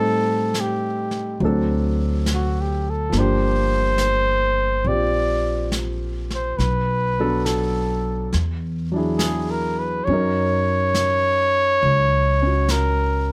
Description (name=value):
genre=jazz ballad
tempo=69 BPM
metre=4/4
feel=swing 69% on 8ths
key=unclear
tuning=A4 = 439 Hz
part: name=breathy trumpet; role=melody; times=0.0-13.3 s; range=F#4 to D5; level=-24 LUFS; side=equal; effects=none
part: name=warm concert grand piano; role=accompaniment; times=0.0-13.3 s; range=F3 to Bb4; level=-28 LUFS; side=equal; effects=none
part: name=upright bass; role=bass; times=0.0-13.3 s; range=G1 to A2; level=-25 LUFS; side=equal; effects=none
part: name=jazz brush drum kit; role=drums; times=0.5-13.3 s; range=brushed snare drum, hi-hat, snare drum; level=-32 LUFS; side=equal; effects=none
room=little or no reverb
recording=close, detailed microphones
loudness=-21 LUFS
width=mono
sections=0.0-13.3 A section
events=none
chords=0.0 Am7b5; 1.4 D7; 3.1 Gm7; 6.6 Bm7; 8.3 E9; 10.1 Gb6